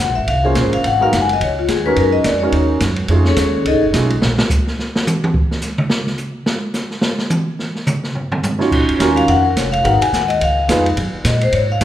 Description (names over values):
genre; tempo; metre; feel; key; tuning
jazz, small-group swing and bop; 213 BPM; 4/4; swing 59% on 8ths; Eb minor from 8.7 s; A4 = 441 Hz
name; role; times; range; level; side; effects
vibraphone with medium hard mallets; melody; 0.0-3.8, 9.0-11.8 s; C#4 to Ab5; -17 LUFS; left 3 dB; none
upright bass; bass; 0.0-4.4, 8.7-11.8 s; F1 to Bb2; -19 LUFS; equal; none
open jazz drum kit; drums; 0.3-11.8 s; crash cymbal, hi-hat, kick drum, ride cymbal, snare drum, toms; -19 LUFS; right 1 dB; none
warm concert grand piano; accompaniment; 0.4-4.1, 8.6-11.8 s; Ab3 to Db5; -19 LUFS; right 2 dB; none
room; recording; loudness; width
wet recital hall reverb, RT60 1.7 s; recorded in a church or concert hall; -14 LUFS; side -12 dB against mid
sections
0.0-8.7 A section; 8.7-11.8 A section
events
vibraphone solo 0.0-11.8; drum solo 4.2-8.7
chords
0.0 Bbm9; 0.8 Abm9; 1.4 Dbsus2; 2.0 Gb69; 3.1 F7alt; 4.2 N.C.; 8.2 Dbadd9; 8.7 Ebm9; 9.8 Abm7; 10.4 Db7; 11.0 Gb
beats
0.00 0.28 0.56 | 0.84 1.12 1.40 1.68 | 1.96 2.25 2.53 2.81 | 3.09 3.37 3.65 3.93 | 4.22 4.50 4.78 5.06 | 5.34 5.62 5.90 6.19 | 6.47 6.75 7.03 7.31 | 7.59 7.87 8.15 8.44 | 8.72 9.00 9.28 9.56 | 9.84 10.12 10.40 10.69 | 10.97 11.25 11.53 11.81